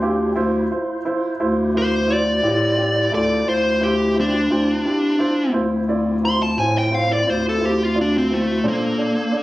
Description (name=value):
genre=slow blues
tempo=58 BPM (dotted quarters)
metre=12/8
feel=straight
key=D minor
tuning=A4 = 439 Hz
part: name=dark grand piano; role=accompaniment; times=0.0-9.4 s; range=D4 to F5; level=-24 LUFS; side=right 2 dB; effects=none
part: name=tonewheel organ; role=sustained chords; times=0.0-9.4 s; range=C4 to C5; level=-31 LUFS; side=equal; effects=slow rotary speaker, overdrive, chorus vibrato
part: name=breathy bass clarinet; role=bass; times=0.0-9.0 s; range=D2 to Bb2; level=-21 LUFS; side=left 1 dB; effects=none
part: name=dark smooth lead guitar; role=melody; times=1.8-9.4 s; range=A3 to C6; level=-19 LUFS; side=equal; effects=overdrive, slapback echo
room=light reverb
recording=recorded on a phone in the room, club reverb, compression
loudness=-17 LUFS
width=side -17 dB against mid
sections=0.0-9.4 A section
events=grand piano fill 0.0-0.4; lead electric guitar solo 0.0-9.4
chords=0.0 Dm7; 8.6 Bbmaj7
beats=| 0.37 1.41 2.44 3.47 | 4.51 5.54 6.57 7.61 | 8.64